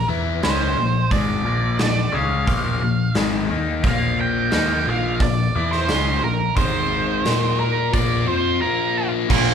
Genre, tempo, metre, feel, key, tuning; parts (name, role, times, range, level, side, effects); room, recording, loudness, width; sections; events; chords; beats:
classic rock; 88 BPM; 4/4; straight; A4 = 441 Hz
octave-fuzz lead guitar; melody; 0.0-9.1 s; Bb4 to G5; -23 LUFS; right 5 dB; wah, distortion
biting overdriven guitar; riff; 0.0-9.5 s; Ab2 to Bb4; -22 LUFS; left 6 dB; phaser
hollow-body short-scale picked electric bass; bass; 0.0-9.5 s; Ab1 to Bb2; -25 LUFS; right 1 dB
big rock drum kit; drums; 0.4-9.5 s; crash cymbal, hi-hat, kick drum, snare drum; -24 LUFS; right 1 dB
distorted electric guitar; riff; 9.3-9.5 s; Bb2 to Bb3; -18 LUFS; right 8 dB; overdrive
moderate large studio reverb, RT60 1.2 s; band playing live in one room; -18 LUFS; side -7 dB against mid
0.0-9.3 A section
break 8.6-9.3
0.0 Bb; 6.6 Ab5; 7.3 Bb5
0.44 | 1.12 1.80 2.48 3.16 | 3.84 4.53 5.21 5.89 | 6.57 7.25 7.93 8.62 | 9.30